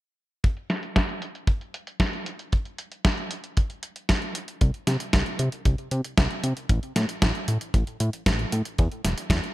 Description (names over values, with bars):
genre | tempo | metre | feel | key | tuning
italo disco | 115 BPM | 4/4 | straight | unclear | A4 = 444 Hz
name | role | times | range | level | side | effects
detuned 8-bit digital drum machine | drums | 0.4-9.5 s | hi-hat, snare drum | -26 LUFS | equal | low-pass filter on hats, low-pass filter on snare, low-pass filter on room, gated reverb
kick drum | drums | 0.4-9.4 s | none | -22 LUFS | equal | none
fat analog bass | bass | 4.6-9.4 s | E1 to C3 | -27 LUFS | equal | none
room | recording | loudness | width
little or no reverb | none | -23 LUFS | side -17 dB against mid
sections
0.4-8.8 A section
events
none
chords
none